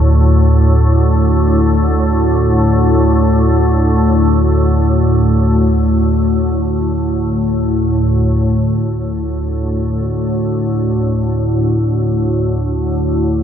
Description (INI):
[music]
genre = ambient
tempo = free time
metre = none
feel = none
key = unclear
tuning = A4 = 440 Hz
[part]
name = organ-like drone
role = solo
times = 0.0-13.4 s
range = D2 to A2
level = -11 LUFS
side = equal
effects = ensemble chorus, built-in reverb
[sound]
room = wet cathedral reverb, RT60 6.7 s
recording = none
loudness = -12 LUFS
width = side -9 dB against mid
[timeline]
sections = 0.0-8.3 A section; 8.3-13.4 B section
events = none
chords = 0.0 D5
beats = free time